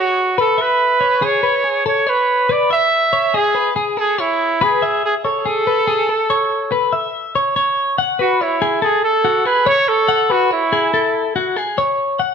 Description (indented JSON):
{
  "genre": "rock",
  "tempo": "142 BPM",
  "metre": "5/4",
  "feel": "straight",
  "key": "unclear",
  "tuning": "A4 = 440 Hz",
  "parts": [
    { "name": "warm trumpet", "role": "melody", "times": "0.0-11.3 s", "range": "E4 to E5", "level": "-16 LUFS", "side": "right 2 dB", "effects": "digital delay" },
    { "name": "twelve-string electric guitar", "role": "arpeggios", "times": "0.0-12.3 s", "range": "F#4 to F#5", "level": "-18 LUFS", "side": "left 4 dB", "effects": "none" }
  ],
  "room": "moderate large studio reverb, RT60 1.2 s",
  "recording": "band playing live in one room",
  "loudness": "-14 LUFS",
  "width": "side -6 dB against mid",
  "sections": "0.0-7.6 A section; 7.6-12.3 B section",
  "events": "none",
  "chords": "0.0 F#m11 (rootless); 7.6 Bsus2 (rootless)"
}